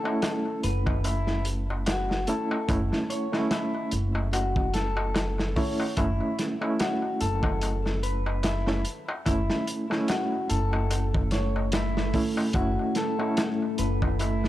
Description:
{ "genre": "trip hop", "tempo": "73 BPM", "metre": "4/4", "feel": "swing 57% on 16ths", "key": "unclear", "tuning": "A4 = 442 Hz", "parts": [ { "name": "barky reed electric piano", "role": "accompaniment", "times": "0.0-14.5 s", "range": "A3 to E4", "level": "-30 LUFS", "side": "right 1 dB", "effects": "tremolo, tape echo" }, { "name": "electric guitar at the edge of break-up", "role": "arpeggios", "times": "0.0-14.5 s", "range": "E4 to C#5", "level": "-32 LUFS", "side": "left 3 dB", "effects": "tape echo" }, { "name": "darbuka", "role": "percussion", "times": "0.1-14.5 s", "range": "none", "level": "-36 LUFS", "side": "left 1 dB", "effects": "none" }, { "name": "crunchy breakbeat drum kit", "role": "drums", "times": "0.2-14.5 s", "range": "hi-hat, kick drum, snare drum", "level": "-30 LUFS", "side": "equal", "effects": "none" }, { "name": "upright bass", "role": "bass", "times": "0.6-14.5 s", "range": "F#1", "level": "-28 LUFS", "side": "equal", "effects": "none" }, { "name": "deep dark ambient pad", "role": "sustained chords", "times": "9.9-14.5 s", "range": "A3 to A4", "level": "-33 LUFS", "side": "left 1 dB", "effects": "chorus, built-in reverb" } ], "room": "small room ambience", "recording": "dry, gritty hardware recording, cassette tape", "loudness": "-24 LUFS", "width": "side -14 dB against mid", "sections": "0.0-14.5 A section", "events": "none", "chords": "0.0 B9sus4/F#; 2.7 F#m7; 6.0 B9sus4/F# (rootless); 9.3 F#m7; 12.6 B9sus4/F#" }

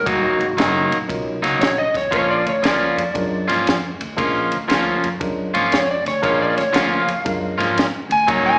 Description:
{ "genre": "electric blues shuffle", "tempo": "117 BPM", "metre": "4/4", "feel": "swing 66% on 8ths", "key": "unclear", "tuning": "A4 = 441 Hz", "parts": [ { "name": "electric slide guitar", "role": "second line", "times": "0.0-8.6 s", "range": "Gb4 to Ab5", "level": "-19 LUFS", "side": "equal", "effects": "none" }, { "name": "upright bass", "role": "bass", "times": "0.0-8.6 s", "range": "Eb1 to Ab2", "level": "-28 LUFS", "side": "equal", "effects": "none" }, { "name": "clean electric guitar", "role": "riff", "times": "0.1-8.6 s", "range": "Eb3 to F4", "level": "-19 LUFS", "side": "equal", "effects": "slapback echo" }, { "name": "compact cocktail drum kit", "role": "drums", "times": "0.1-8.4 s", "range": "kick drum, ride cymbal, snare drum", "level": "-24 LUFS", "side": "equal", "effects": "slapback echo" }, { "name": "dark concert grand piano", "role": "accompaniment", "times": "1.1-7.6 s", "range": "Gb3 to Bb4", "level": "-26 LUFS", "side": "equal", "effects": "none" } ], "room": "light reverb, studio reverb", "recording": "live gig heard through the venue's PA, club reverb, small speaker sound", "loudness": "-16 LUFS", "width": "side -37 dB against mid", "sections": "0.0-8.6 A section", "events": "electric slide guitar solo 0.0-8.6", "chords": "0.0 Ebm7; 2.1 Bb7#9" }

